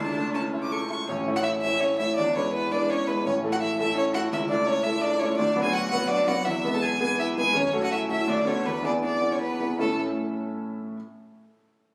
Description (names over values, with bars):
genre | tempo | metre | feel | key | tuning
quick classical-period movement for piano trio | 150-170 BPM | 3/4 | rubato | A major | A4 = 440 Hz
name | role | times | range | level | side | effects
clear violin | melody | 0.0-10.0 s | A4 to D6 | -28 LUFS | equal | none
rich cello | second line | 0.0-10.0 s | A3 to A4 | -35 LUFS | equal | none
clear baby grand piano | accompaniment | 0.0-10.0 s | A1 to E5 | -30 LUFS | equal | none
room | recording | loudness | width
moderate concert hall reverb, RT60 1.8 s | recorded on a phone in the room, club reverb | -26 LUFS | mono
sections
0.0-1.1 A section; 1.1-9.8 B section; 9.8-10.9 C section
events
slowing down 7.0-9.8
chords
0.0 A/C#; 1.1 A; 2.2 E; 3.2 A5; 4.3 A/C#; 5.4 Bm/D; 6.5 E; 7.5 F#m; 8.3 Bm7/D; 8.6 E; 9.8 A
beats
0.33 0.70 | 1.08 1.45 1.81 | 2.17 2.53 2.88 | 3.25 3.60 3.96 | 4.31 4.67 5.02 | 5.38 5.73 6.09 | 6.45 6.82 7.18 | 7.54 7.91 8.27 | 8.64 9.02 9.40 | 9.80